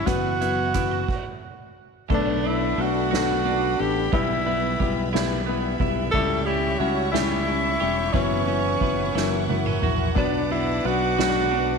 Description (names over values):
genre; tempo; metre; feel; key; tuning
six-eight pop ballad; 59 BPM (dotted quarters); 6/8; straight; B minor; A4 = 444 Hz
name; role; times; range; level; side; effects
mellow tenor saxophone; melody; 0.0-11.8 s; C#4 to A4; -25 LUFS; right 2 dB; tape echo
rich studio string section; sustained chords; 0.0-11.8 s; G3 to D6; -34 LUFS; left 2 dB; none
twelve-string electric guitar; arpeggios; 0.0-11.8 s; E3 to C#5; -30 LUFS; right 13 dB; none
fingered electric bass; bass; 0.0-11.8 s; E1 to C#2; -29 LUFS; right 1 dB; none
warm concert grand piano; accompaniment; 0.1-11.8 s; E3 to E4; -26 LUFS; left 12 dB; none
soft-mallet drum kit; drums; 0.1-11.7 s; crash cymbal, hi-hat, kick drum, ride cymbal, rim click, snare drum, toms; -29 LUFS; right 4 dB; none
room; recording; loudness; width
light reverb, small room ambience; 1960s-style stereo with parts hard left and right; -20 LUFS; side -5 dB against mid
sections
0.0-2.1 A section; 2.1-11.8 B section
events
stop 1.1-2.1; drum fill 9.1-10.2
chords
0.1 F#7sus4; 1.1 N.C.; 2.1 Bm7; 4.1 Em/B; 6.1 C#dim; 8.1 F#7sus4; 9.1 F#7; 10.2 Bm